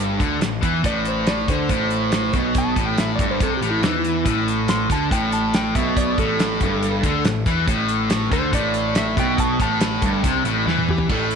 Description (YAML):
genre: classic rock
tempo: 140 BPM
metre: 4/4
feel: straight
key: A minor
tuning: A4 = 440 Hz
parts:
  - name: cranked stack guitar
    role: riff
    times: 0.0-11.4 s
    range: G2 to E3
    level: -23 LUFS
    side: left 12 dB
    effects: overdrive
  - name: sludgy distorted guitar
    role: riff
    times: 0.0-11.4 s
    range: G2 to E3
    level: -23 LUFS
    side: right 11 dB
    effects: overdrive
  - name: fuzz picked electric bass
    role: bass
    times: 0.0-11.4 s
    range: G1 to E2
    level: -27 LUFS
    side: equal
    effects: overdrive
  - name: damped 70s drum kit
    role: drums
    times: 0.2-11.4 s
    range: crash cymbal, hi-hat, kick drum, snare drum, toms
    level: -23 LUFS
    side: equal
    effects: none
  - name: electric slide guitar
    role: melody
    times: 0.9-11.4 s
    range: D#4 to C6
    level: -26 LUFS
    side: right 1 dB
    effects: slapback echo
  - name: biting overdriven guitar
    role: riff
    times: 11.1-11.4 s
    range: A2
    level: -29 LUFS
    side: left 2 dB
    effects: phaser
room: moderate echo chamber reverb, RT60 1.4 s, small room ambience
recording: 1960s-style stereo with parts hard left and right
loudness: -18 LUFS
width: side -6 dB against mid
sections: 0.0-11.1 A section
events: electric slide guitar solo 0.0-11.1; drum fill 10.7-11.1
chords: 0.0 A5